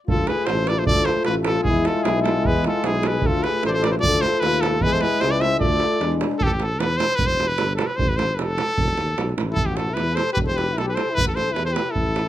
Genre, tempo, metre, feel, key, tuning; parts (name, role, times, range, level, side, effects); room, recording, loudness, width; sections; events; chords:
balkan folk, Balkan brass band; 152 BPM; 2/4; swing 55% on 16ths; D dorian sharp4, A minor from 6.4 s; A4 = 439 Hz
bright trumpet; melody; 0.1-12.3 s; G4 to E5; -23 LUFS; equal
mellow flugelhorn; second line; 0.1-6.2, 9.5-12.3 s; E4 to C5; -28 LUFS; left 6 dB
warm euphonium; accompaniment; 0.1-6.4 s; D4 to F4; -27 LUFS; left 4 dB
warm trombone; accompaniment; 0.1-6.4 s; G#3 to A3; -28 LUFS; right 2 dB
mellow tuba; bass; 0.1-12.3 s; E1 to E2; -26 LUFS; equal
davul; percussion; 0.1-12.3 s; -25 LUFS; right 3 dB
light reverb; close, detailed microphones; -18 LUFS; side -12 dB against mid
0.1-6.4 A section; 6.4-12.3 B section
0.1 Dm; 1.7 E; 3.2 Dm; 4.8 E; 5.6 Dm; 6.0 E7; 6.4 A5; 7.2 Em; 8.0 F; 8.8 E5; 9.6 A5; 10.4 E5; 11.2 A5